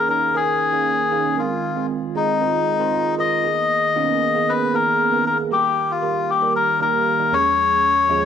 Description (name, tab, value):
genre	pop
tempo	116 BPM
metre	4/4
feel	straight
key	unclear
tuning	A4 = 440 Hz
part	melodica	melody	0.0-8.3 s	Eb4 to Eb5	-18 LUFS	left 5 dB	cassette tape, plate reverb
part	bell-like tine electric piano	accompaniment	0.0-8.3 s	Eb2 to Bb4	-23 LUFS	right 9 dB	phaser, cassette tape
room	wet studio reverb, RT60 0.6 s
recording	home recording on cassette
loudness	-17 LUFS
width	side -8 dB against mid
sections	0.0-3.4 A section; 3.4-8.3 B section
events	none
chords	0.0 Eb7sus4; 1.4 Fm7; 3.4 Abmadd9/Eb; 5.5 Eb; 7.3 Db/Eb